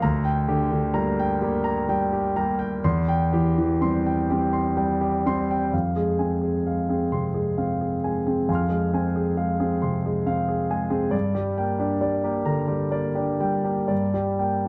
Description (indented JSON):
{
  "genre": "neoclassical minimalist piano",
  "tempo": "40-46 BPM (dotted quarters)",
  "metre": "6/8",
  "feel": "rubato",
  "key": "F dorian",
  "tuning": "A4 = 440 Hz",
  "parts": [
    { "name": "warm concert grand piano", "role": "solo", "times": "0.0-14.7 s", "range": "D2 to F6", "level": "-24 LUFS", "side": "equal", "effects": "slapback echo" }
  ],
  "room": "moderate studio reverb, RT60 0.7 s",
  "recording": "dark, warm production",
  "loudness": "-24 LUFS",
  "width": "mono",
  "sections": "0.0-5.7 A section; 5.7-14.7 B section",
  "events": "none",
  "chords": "0.0 Gm/D; 2.8 C/E; 5.7 Fm; 11.1 Gm",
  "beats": "| 0.02 1.41 | 2.83 4.29 | 5.73 7.12 | 8.48 9.81 | 11.14 12.47 | 13.91"
}